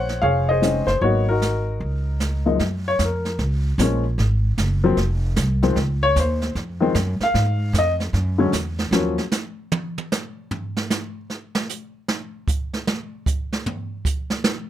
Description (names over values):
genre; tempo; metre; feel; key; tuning
jazz piano trio; 152 BPM; 4/4; swing 65% on 8ths; unclear; A4 = 440 Hz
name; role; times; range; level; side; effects
warm baby grand piano; melody; 0.0-9.2 s; Gb2 to Gb5; -20 LUFS; left 3 dB; none
upright bass; bass; 0.0-9.2 s; F1 to Ab2; -21 LUFS; right 1 dB; none
jazz brush drum kit; drums; 0.1-14.6 s; brushed snare drum, hi-hat, kick drum, snare drum, toms; -25 LUFS; right 2 dB; none
room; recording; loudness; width
little or no reverb; close, detailed microphones; -19 LUFS; side -11 dB against mid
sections
0.0-2.6 A section; 2.6-14.7 B section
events
grand piano solo 2.6-14.7; drum solo 8.9-14.7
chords
0.0 Bbm11; 1.0 Abm7; 1.8 N.C.; 2.6 Gbmaj7; 4.2 Ab13; 5.8 Dbmaj7; 7.3 Fm; 8.1 Esus2; 8.9 N.C.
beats
0.23 0.62 | 1.02 1.41 1.81 2.21 | 2.60 3.00 3.40 3.79 | 4.19 4.58 4.98 5.37 | 5.77 6.17 6.56 6.96 | 7.35 7.75 8.14 8.54 | 8.93 9.32 9.72 10.11 | 10.51 10.90 11.30 11.69 | 12.09 12.48 12.87 13.27 | 13.66 14.05 14.45